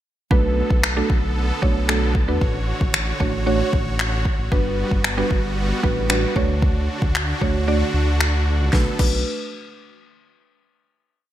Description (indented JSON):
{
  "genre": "dance-pop",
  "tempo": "114 BPM",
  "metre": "4/4",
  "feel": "straight",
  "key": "B minor",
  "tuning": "A4 = 439 Hz",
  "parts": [
    { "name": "mallet-like synth pluck", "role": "accompaniment", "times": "0.3-9.2 s", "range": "G3 to D5", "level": "-24 LUFS", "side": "right 2 dB", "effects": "chorus, sidechain pumping" },
    { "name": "supersaw chords", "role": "sustained chords", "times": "0.3-9.0 s", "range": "D3 to C#5", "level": "-27 LUFS", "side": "equal", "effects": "sidechain pumping" },
    { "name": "round analog bass", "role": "bass", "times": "0.3-9.2 s", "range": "G1 to E2", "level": "-22 LUFS", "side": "equal", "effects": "sidechain pumping" },
    { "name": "deep house drum kit", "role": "drums", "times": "0.3-9.1 s", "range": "crash cymbal, finger snaps, kick drum, snare drum", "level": "-21 LUFS", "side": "equal", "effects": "gated reverb" }
  ],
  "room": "light reverb",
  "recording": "bright 1980s-style digital production",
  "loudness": "-18 LUFS",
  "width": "side -12 dB against mid",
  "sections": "0.3-8.7 verse; 8.7-10.8 final chord",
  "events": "kick muted 7.7-8.7",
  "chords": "0.3 Bm7; 2.4 Dmaj7/A; 4.5 Gmaj7; 6.4 Dmaj7; 8.7 Bm7"
}